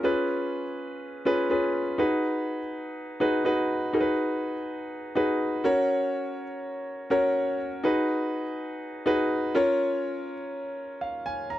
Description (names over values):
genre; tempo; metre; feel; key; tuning
pop; 123 BPM; 4/4; straight; unclear; A4 = 439 Hz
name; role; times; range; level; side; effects
warm concert grand piano; solo; 0.0-11.6 s; Db4 to Bb5; -25 LUFS; equal; none
room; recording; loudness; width
light reverb; dry, close 1970s-style studio recording; -25 LUFS; side -14 dB against mid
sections
0.0-3.9 A section; 3.9-11.6 B section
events
none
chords
0.0 Db7; 2.0 Abm7; 5.6 Gb; 7.8 Abm7; 9.6 Bbm